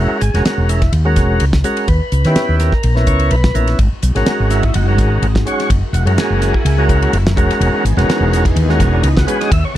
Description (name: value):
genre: electric jazz fusion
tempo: 126 BPM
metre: 4/4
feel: swing 54% on 16ths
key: unclear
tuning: A4 = 440 Hz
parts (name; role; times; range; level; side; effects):
- tonewheel organ; accompaniment; 0.0-9.8 s; G#3 to E5; -17 LUFS; right 1 dB; slow rotary speaker
- woody fretless electric bass; bass; 0.0-9.8 s; E1 to D#3; -14 LUFS; equal; none
- damped 70s drum kit; drums; 0.2-9.6 s; hi-hat, kick drum, ride cymbal, snare drum; -19 LUFS; equal; none
- string machine, full ensemble; sustained chords; 3.8-9.8 s; D#3 to G#4; -23 LUFS; equal; ensemble chorus
room: little or no reverb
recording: dark, warm production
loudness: -12 LUFS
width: side -13 dB against mid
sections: 0.0-9.8 A section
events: none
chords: 0.0 Emaj7; 1.9 D#7b9b13; 3.8 G#7(no3); 5.7 F#9; 7.4 Emaj7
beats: 0.46 0.93 1.41 | 1.89 2.36 2.84 3.32 | 3.79 4.27 4.75 5.22 | 5.70 6.18 6.65 7.13 | 7.61 8.08 8.56 9.04 | 9.51